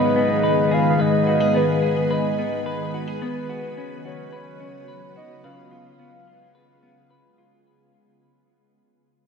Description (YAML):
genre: dream pop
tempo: 108 BPM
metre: 4/4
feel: straight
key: unclear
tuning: A4 = 440 Hz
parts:
  - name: soft octave-layered synth lead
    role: melody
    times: 0.0-7.3 s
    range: B4 to E#5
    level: -24 LUFS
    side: right 1 dB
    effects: chorus, phaser, ping-pong delay
  - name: ethereal airy pad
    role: sustained chords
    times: 0.0-7.6 s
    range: C#3 to B4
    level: -23 LUFS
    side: left 1 dB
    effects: ensemble chorus, built-in reverb, phaser
  - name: semi-hollow electric guitar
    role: arpeggios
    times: 0.0-8.2 s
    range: G#2 to B4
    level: -27 LUFS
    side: left 3 dB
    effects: wide subtle chorus, ping-pong delay
room: wet huge ambient reverb, RT60 8.7 s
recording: dreamy mix soaked in reverb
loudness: -18 LUFS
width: side -6 dB against mid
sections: 0.0-7.7 A section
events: fade-out 0.0-7.7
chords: 0.0 G#m; 3.2 Bsus2; 5.4 C#7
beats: 0.43 | 0.99 1.55 2.10 2.66 | 3.21 3.77 4.32 4.88 | 5.43 5.99 6.55 7.10